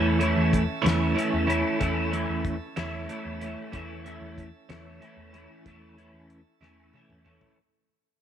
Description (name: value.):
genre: psychedelic rock.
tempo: 62 BPM (dotted quarters).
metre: 6/8.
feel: straight.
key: unclear.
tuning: A4 = 440 Hz.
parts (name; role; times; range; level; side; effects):
bright tonewheel organ; sustained chords; 0.0-7.5 s; C#4 to A5; -38 LUFS; right 7 dB; slow rotary speaker.
twelve-string electric guitar; riff; 0.0-7.6 s; E3 to E4; -26 LUFS; right 1 dB; rotary speaker, double-tracked left and right.
hollow-body short-scale picked electric bass; bass; 0.0-7.4 s; E2; -30 LUFS; equal; none.
damped 70s drum kit; drums; 0.2-7.6 s; hi-hat, kick drum, snare drum, toms; -30 LUFS; left 2 dB; none.
room: moderate echo chamber reverb, RT60 2.1 s.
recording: 1960s-style stereo.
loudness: -24 LUFS.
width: side -9 dB against mid.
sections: 0.0-7.6 A section.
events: fade-out 0.0-7.6; drum fill 6.6-7.6.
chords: 0.0 A/E.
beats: 0.85 | 1.81 2.77 | 3.73 4.69 | 5.65 6.61.